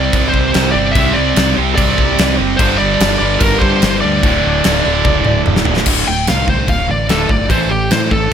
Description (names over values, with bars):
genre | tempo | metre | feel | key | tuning
hard rock | 147 BPM | 4/4 | straight | unclear | A4 = 440 Hz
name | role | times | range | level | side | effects
smooth overdriven lead guitar | melody | 0.0-8.3 s | G4 to G5 | -18 LUFS | left 1 dB | none
crunchy overdriven guitar | riff | 0.0-8.3 s | D2 to C4 | -19 LUFS | right 10 dB | none
overdriven semi-hollow guitar | riff | 0.0-8.3 s | D2 to C4 | -22 LUFS | left 13 dB | none
tight distorted guitar | riff | 0.0-5.9 s | D2 to C4 | -20 LUFS | right 1 dB | distortion
modern bright fingered electric bass | bass | 0.0-8.3 s | D1 to A2 | -19 LUFS | equal | none
gated 80s drum kit | drums | 0.1-8.2 s | crash cymbal, kick drum, snare drum, toms | -16 LUFS | equal | none
room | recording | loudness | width
light reverb, small room ambience | none | -11 LUFS | side -8 dB against mid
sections
0.0-5.9 A section; 5.9-8.3 B section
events
drum fill 5.0-5.9; lead electric guitar solo 5.9-8.3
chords
0.0 C5; 2.6 G5; 4.2 D5; 7.5 A5